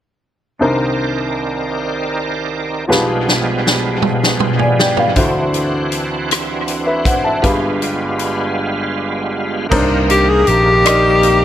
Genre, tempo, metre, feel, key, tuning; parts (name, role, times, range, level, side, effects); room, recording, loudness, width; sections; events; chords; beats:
slow gospel; 53 BPM (dotted quarters); 6/8; straight; C minor; A4 = 440 Hz
clear baby grand piano; accompaniment; 0.6-11.4 s; G1 to A5; -18 LUFS; left 1 dB
bright tonewheel organ; sustained chords; 0.6-11.4 s; B2 to D5; -20 LUFS; right 3 dB; fast rotary speaker, overdrive, chorus vibrato
swinging big-band drum kit; drums; 2.9-11.4 s; crash cymbal, hi-hat, kick drum, rim click, snare drum, toms; -18 LUFS; equal; analog delay
fingered electric bass; bass; 9.7-11.4 s; Bb1 to C2; -17 LUFS; equal
breathy tenor saxophone; melody; 10.1-11.4 s; G4 to Ab4; -11 LUFS; left 2 dB; analog delay
moderate spring reverb, RT60 1.8 s, studio ambience; echo-heavy mix; -13 LUFS; side -11 dB against mid
0.6-9.7 A section; 9.7-11.4 B section
drum fill 2.9-5.2; break 8.6-9.7
0.6 Cm9; 2.9 G7b9/B; 5.2 D9; 7.4 G7b9; 9.7 Cm9
| 0.61 1.75 | 2.89 4.03 | 5.17 6.30 | 7.44 8.58 | 9.72 10.86